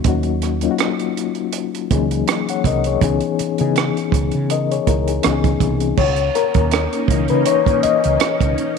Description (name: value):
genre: R&B, neo-soul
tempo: 81 BPM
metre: 4/4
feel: swing 56% on 16ths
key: C# dorian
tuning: A4 = 439 Hz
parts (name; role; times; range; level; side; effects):
- mellow reed electric piano; accompaniment; 0.0-8.8 s; E3 to F#5; -18 LUFS; left 11 dB; fast tremolo
- compact cocktail drum kit; drums; 0.0-8.8 s; crash cymbal, hi-hat, kick drum, rim click; -21 LUFS; right 7 dB; none
- woody fretless electric bass; bass; 0.1-8.5 s; B#1 to C#3; -21 LUFS; right 2 dB; none
- phased string machine; sustained chords; 6.0-8.8 s; A#3 to D#4; -24 LUFS; right 3 dB; ensemble chorus, phaser
room: moderate plate reverb, RT60 2.4 s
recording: 1960s-style stereo with parts hard left and right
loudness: -16 LUFS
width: side -5 dB against mid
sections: 0.0-6.0 A section; 6.0-8.8 B section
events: reed electric piano solo 6.0-8.8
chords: 0.1 D#m7; 3.0 C#m9; 6.0 C#m69